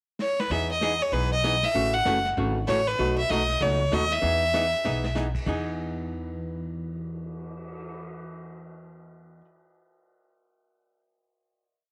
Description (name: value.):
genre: country, western swing.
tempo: 194 BPM.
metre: 4/4.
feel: swing 62% on 8ths.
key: E major.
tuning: A4 = 442 Hz.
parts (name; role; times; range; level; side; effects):
bright fiddle; melody; 0.2-5.2 s; B4 to F#5; -27 LUFS; equal; none.
vintage brush drum kit; drums; 0.2-7.9 s; brushed snare drum, crash cymbal, cymbal swell, hi-hat, kick drum, snare drum; -42 LUFS; equal; none.
archtop guitar, miked and amplified; accompaniment; 0.5-9.5 s; B2 to G#4; -32 LUFS; equal; none.
upright bass; bass; 0.5-9.4 s; F#1 to E2; -34 LUFS; equal; none.
room: light reverb, small room reverb.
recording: none.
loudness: -26 LUFS.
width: mono.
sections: 0.0-0.5 pickup bar; 0.5-5.5 A section; 5.5-7.9 final chord.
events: drum fill 0.2-0.5, 4.8-5.2.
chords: 0.0 N.C.; 0.5 Emaj7; 1.8 A6; 3.0 B7; 4.2 Emaj7.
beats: 0.20 | 0.51 0.82 1.13 1.44 | 1.75 2.06 2.37 2.68 | 2.99 3.30 3.61 3.92 | 4.23 4.54 4.85 5.16 | 5.47 5.78 6.09 6.40 | 6.71 7.02 7.33 7.64.